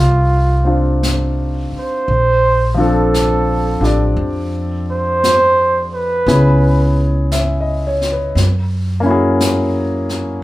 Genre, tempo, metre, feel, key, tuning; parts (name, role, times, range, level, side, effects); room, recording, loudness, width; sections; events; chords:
jazz ballad; 57 BPM; 4/4; swing 66% on 8ths; A4 = 441 Hz
trumpet with bucket mute; melody; 0.0-7.3 s; F4 to C5; -16 LUFS; right 2 dB
warm concert grand piano; accompaniment; 0.0-10.4 s; F3 to Fb5; -18 LUFS; left 2 dB
upright bass; bass; 0.0-10.4 s; A1 to F#2; -16 LUFS; equal
jazz brush drum kit; drums; 1.0-10.4 s; brushed snare drum, hi-hat, snare drum; -25 LUFS; left 2 dB
light reverb; band playing live in one room; -13 LUFS; side -17 dB against mid
0.0-10.4 A section
muted trumpet solo 0.0-10.4
0.0 F13; 2.1 Bbmaj9; 6.3 Dbm7; 8.4 F#9